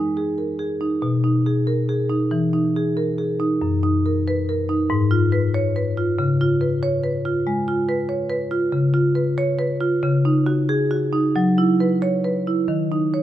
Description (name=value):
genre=classical, contemporary piece for solo marimba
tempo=93 BPM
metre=4/4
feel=rubato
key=unclear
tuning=A4 = 440 Hz
part: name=marimba with medium hard mallets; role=solo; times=0.0-13.2 s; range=F#2 to C#5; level=-18 LUFS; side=equal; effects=none
room=moderate recital hall reverb, RT60 1.7 s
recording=close, detailed microphones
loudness=-18 LUFS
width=side -12 dB against mid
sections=0.0-13.2 A section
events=none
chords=0.0 Emaj7 (rootless); 1.0 B6; 2.3 Emaj7; 3.6 F#6; 4.9 G#m6; 6.2 C#7; 10.0 D#m7/C#; 11.4 F#7sus4; 12.7 C#sus2/D#